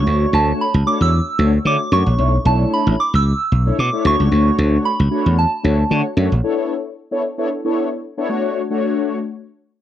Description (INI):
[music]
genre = early-eighties boogie funk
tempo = 113 BPM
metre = 4/4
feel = swing 56% on 16ths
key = unclear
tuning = A4 = 440 Hz
[part]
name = soft synth bell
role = melody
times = 0.0-6.1 s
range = A5 to E6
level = -20 LUFS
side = right 3 dB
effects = chorus, slapback echo
[part]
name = mellow synth brass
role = accompaniment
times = 0.0-9.2 s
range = A3 to C#5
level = -20 LUFS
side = left 3 dB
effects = chorus, phaser
[part]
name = slap bass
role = bass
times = 0.0-6.4 s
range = A1 to D3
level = -15 LUFS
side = equal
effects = none
[sound]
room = little or no reverb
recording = dry, close 1970s-style studio recording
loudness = -15 LUFS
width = side -11 dB against mid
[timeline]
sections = 0.0-6.4 A section; 6.4-9.8 B section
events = none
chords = 0.0 Dmaj7; 2.2 Bm11; 4.0 Dmaj7; 6.4 Bm11; 8.3 Dmaj7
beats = | 0.07 0.60 1.13 1.66 | 2.19 2.72 3.25 3.78 | 4.31 4.84 5.38 5.91 | 6.44 6.97 7.50 8.03 | 8.56 9.09